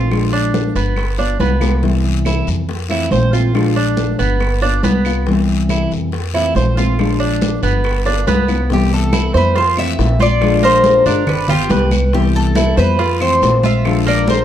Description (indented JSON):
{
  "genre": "latin, Cuban son and guajira",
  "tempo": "140 BPM",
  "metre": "4/4",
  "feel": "straight",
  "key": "C major",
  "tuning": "A4 = 440 Hz",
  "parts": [
    { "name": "nylon-string guitar", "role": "accompaniment", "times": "0.0-14.4 s", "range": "C3 to F4", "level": "-19 LUFS", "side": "left 3 dB", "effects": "none" },
    { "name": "Cuban tres", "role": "arpeggios", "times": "0.0-14.4 s", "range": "Bb3 to C5", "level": "-20 LUFS", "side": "right 4 dB", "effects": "none" },
    { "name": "upright bass", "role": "bass", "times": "0.0-14.4 s", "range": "G1 to F2", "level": "-17 LUFS", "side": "equal", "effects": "none" },
    { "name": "bongos", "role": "percussion", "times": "0.1-14.4 s", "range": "none", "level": "-27 LUFS", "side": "left 5 dB", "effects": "none" },
    { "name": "claves", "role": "percussion", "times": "0.1-14.1 s", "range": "none", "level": "-31 LUFS", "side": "right 4 dB", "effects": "none" },
    { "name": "congas", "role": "percussion", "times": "0.1-14.4 s", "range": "none", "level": "-23 LUFS", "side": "right 1 dB", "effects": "none" },
    { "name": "guiro", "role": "percussion", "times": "0.1-14.4 s", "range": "none", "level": "-30 LUFS", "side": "left 7 dB", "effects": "none" },
    { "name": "Cuban tres", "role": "melody", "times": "8.7-14.4 s", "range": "G4 to E5", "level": "-16 LUFS", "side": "left 1 dB", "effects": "none" }
  ],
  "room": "light reverb",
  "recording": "dark, warm production",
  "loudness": "-13 LUFS",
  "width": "side -10 dB against mid",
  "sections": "0.0-8.7 A section; 8.7-14.4 B section",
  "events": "drum fill 1.6, 8.1-8.7",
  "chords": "0.1 Bb7; 1.0 G7; 1.8 Cmaj7; 2.7 Fmaj7; 3.5 Bb7; 4.4 G7; 5.3 Cmaj7; 6.1 Fmaj7; 7.0 Bb7; 7.8 G7; 8.7 Cmaj7; 9.6 Fmaj7; 10.4 Bb7; 11.3 G7; 12.1 Cmaj7; 13.0 Fmaj7; 13.9 Bb7"
}